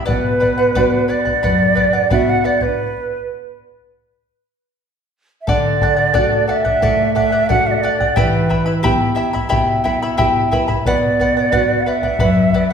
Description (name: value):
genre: andean folk, Andean ensemble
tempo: 89 BPM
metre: 4/4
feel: straight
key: unclear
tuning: A4 = 440 Hz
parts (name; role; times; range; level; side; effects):
- charango; accompaniment; 0.0-12.7 s; E4 to B5; -20 LUFS; left 1 dB; none
- large quena; melody; 0.1-12.7 s; B4 to F#5; -17 LUFS; right 2 dB; none
- nylon-string guitar; accompaniment; 0.1-12.7 s; F#2 to F#5; -20 LUFS; right 1 dB; none
- bombo; percussion; 0.1-12.7 s; none; -21 LUFS; left 1 dB; none
room: wet recital hall reverb, RT60 1.4 s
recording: recorded in a church or concert hall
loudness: -13 LUFS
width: side -7 dB against mid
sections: 0.0-5.5 A section; 5.5-12.7 A section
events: stop 2.8-5.5; nylon-string guitar fill 9.5-10.9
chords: 0.1 Bm; 2.8 N.C.; 5.5 D; 8.2 Em; 10.9 Bm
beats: | 0.08 0.76 1.43 2.11 | 2.78 3.46 4.13 4.80 | 5.48 6.15 6.82 7.50 | 8.17 8.84 9.51 10.18 | 10.86 11.53 12.20